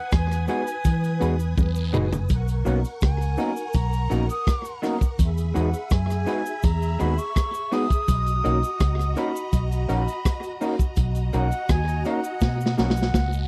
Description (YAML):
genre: lovers rock reggae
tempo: 83 BPM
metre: 4/4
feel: straight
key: B major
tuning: A4 = 440 Hz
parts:
  - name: reedy concert flute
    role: melody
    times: 0.0-13.5 s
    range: F#5 to D#6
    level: -33 LUFS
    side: equal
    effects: tape echo
  - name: string machine, violins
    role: second line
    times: 0.0-13.5 s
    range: F#4 to D#6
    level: -37 LUFS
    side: equal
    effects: ensemble chorus
  - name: vintage muted fingered electric bass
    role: bass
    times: 0.1-13.5 s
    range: F#1 to E3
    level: -26 LUFS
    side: equal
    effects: none
  - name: crunchy breakbeat drum kit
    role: drums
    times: 0.1-13.3 s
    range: hi-hat, kick drum, rim click, snare drum, toms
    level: -25 LUFS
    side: equal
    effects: slapback echo
  - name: cabasa and guiro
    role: percussion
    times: 0.1-13.5 s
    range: none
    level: -46 LUFS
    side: equal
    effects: slapback echo
  - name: tine electric piano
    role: accompaniment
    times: 0.5-12.9 s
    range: G#3 to F#4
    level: -30 LUFS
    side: equal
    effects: none
  - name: electric guitar through a small old amp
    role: stabs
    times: 0.5-12.9 s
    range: F#3 to B4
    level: -32 LUFS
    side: equal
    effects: analog chorus
room: little or no reverb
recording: dry, close 1970s-style studio recording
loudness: -24 LUFS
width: mono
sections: 0.0-13.5 A section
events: drum fill 1.6-2.3, 12.4-13.5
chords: 0.0 Emaj7; 2.3 Bmaj7; 5.2 Emaj7; 8.1 Bmaj7